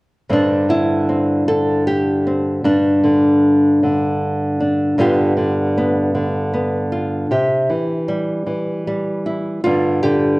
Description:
folk, solo fingerstyle acoustic guitar; 51 BPM (dotted quarters); 6/8; straight; G mixolydian; A4 = 440 Hz
nylon-string guitar; solo; 0.3-10.4 s; G2 to A4; -15 LUFS; equal
moderate large studio reverb, RT60 1.3 s; worn, warbling old tape, cassette tape, warbly pitch drift; -15 LUFS; side -22 dB against mid
0.3-10.4 A section
0.3 Gsus4; 5.0 G7; 7.3 C; 9.6 G5
| 0.29 1.48 | 2.65 3.81 | 4.97 6.13 | 7.30 8.47 | 9.65

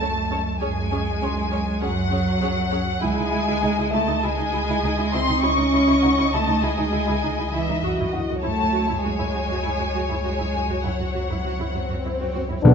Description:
cinematic, suspense film score; 100 BPM; 4/4; straight; A4 = 440 Hz
muted studio violin section; melody; 0.0-12.4 s; C#5 to D#5; -32 LUFS; left 6 dB
muted symphonic violin section; second line; 0.0-12.3 s; E5 to C#6; -26 LUFS; left 3 dB
muted chamber viola section; accompaniment; 0.0-12.5 s; C#4 to A4; -30 LUFS; right 2 dB
muted chamber cello section; bass; 0.0-12.7 s; B2 to C#4; -25 LUFS; right 2 dB
muted studio double bass section; bass; 0.0-12.7 s; B1 to F#2; -30 LUFS; right 3 dB
soft dub sub bass; drone; 0.0-12.7 s; B1 to C#2; -29 LUFS; left 1 dB
felt-muted upright piano; texture; 0.0-12.7 s; E4 to B#5; -35 LUFS; left 4 dB
swell and sub drop; sound effects; 11.3-12.7 s; -31 LUFS; left 3 dB
mellow French horn section; sustained chords; 12.6-12.7 s; B3 to D4; -17 LUFS; left 6 dB
timpani; percussion; 12.6-12.7 s; B2; -10 LUFS; left 1 dB
wet recital hall reverb, RT60 1.6 s; nothing above 7.7 kHz; -20 LUFS; side -6 dB against mid
0.0-12.6 A section
swell 11.3-12.6
0.0 F#madd9/C#; 3.0 C#madd9; 7.8 F#sus2/C#
0.03 | 0.63 1.23 1.83 2.43 | 3.03 3.63 4.23 4.83 | 5.43 6.03 6.63 7.23 | 7.83 8.43 9.03 9.63 | 10.23 10.83 11.43 12.03 | 12.63

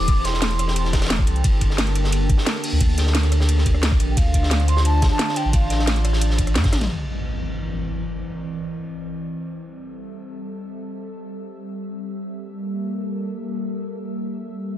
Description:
liquid drum and bass; 176 BPM; 4/4; straight; G dorian; A4 = 440 Hz
mellow hollow concert flute; melody; 0.0-0.9, 4.1-6.2 s; F5 to D6; -29 LUFS; right 1 dB; digital delay
lush unison pad; sustained chords; 0.0-14.8 s; D3 to E5; -28 LUFS; equal; chorus, sidechain pumping
warm sub bass; bass; 0.0-6.9 s; E1 to G2; -20 LUFS; equal
crunchy breakbeat drum kit; drums; 0.1-6.9 s; hi-hat, ride cymbal, snare drum; -30 LUFS; equal; high-pass filter on cymbals, high-pass filter on hats, high-pass filter on snare, high-pass filter on room
electronic kick drum; drums; 0.1-6.7 s; -19 LUFS; equal
garage drum kit; drums; 0.1-7.0 s; crash cymbal, hi-hat, rim click, snare drum, toms; -25 LUFS; equal; low-pass filter on hats, low-pass filter on snare, low-pass filter on toms, low-pass filter on cymbals
impact; sound effects; 6.9-8.3 s; -30 LUFS; equal
studio reverb; dense, heavily limited modern master; -19 LUFS; side -13 dB against mid
0.0-6.9 A section; 6.9-14.8 B section
drop 0.0-6.9; drum fill 6.7; impact 6.9-8.3
0.0 Am7; 1.4 Gmadd9; 4.2 Dm7; 6.9 C9; 9.6 Am7; 12.4 Gm69
| 0.08 0.42 0.76 1.10 | 1.44 1.78 2.12 2.46 | 2.81 3.15 3.49 3.83 | 4.17 4.51 4.85 5.19 | 5.53 5.87 6.21 6.56 | 6.90 7.24 7.58 7.92 | 8.26 8.60 8.94 9.28 | 9.62 9.96 10.31 10.65 | 10.99 11.33 11.67 12.01 | 12.35 12.69 13.03 13.37 | 13.71 14.06 14.40 14.74

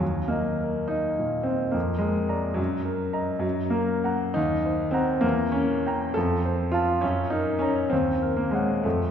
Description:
classical, romantic character piece for solo piano; 63-73 BPM (dotted quarters); 6/8; rubato; A4 = 440 Hz
warm grand piano; solo; 0.0-9.1 s; Eb2 to Bb5; -23 LUFS; equal
wet concert hall reverb, RT60 1.9 s; heard from further back in the room; -23 LUFS; side -8 dB against mid
0.0-9.1 A section
0.0 Eb5; 1.7 Bb7/F; 2.6 Ebm/Gb; 3.4 Gb; 4.4 Cm7b5/Eb; 5.2 Edim7; 6.2 F; 7.0 Gb; 7.9 Ebm7
| 0.01 0.91 | 1.75 2.58 | 3.44 4.37 | 5.23 6.15 | 7.03 7.92 | 8.85

